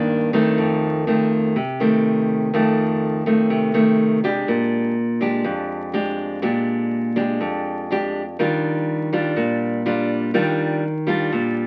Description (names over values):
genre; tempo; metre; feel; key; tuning
bossa nova; 123 BPM; 4/4; straight; unclear; A4 = 441 Hz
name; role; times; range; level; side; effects
nylon-string guitar; solo; 0.0-11.7 s; F2 to G4; -20 LUFS; equal; none
room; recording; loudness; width
wet studio reverb, RT60 0.5 s; very old 78 rpm record, vinyl crackle; -21 LUFS; mono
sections
0.0-11.7 A section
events
none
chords
0.0 Cm9; 0.6 F7; 4.5 Bb6; 8.4 Ebmaj9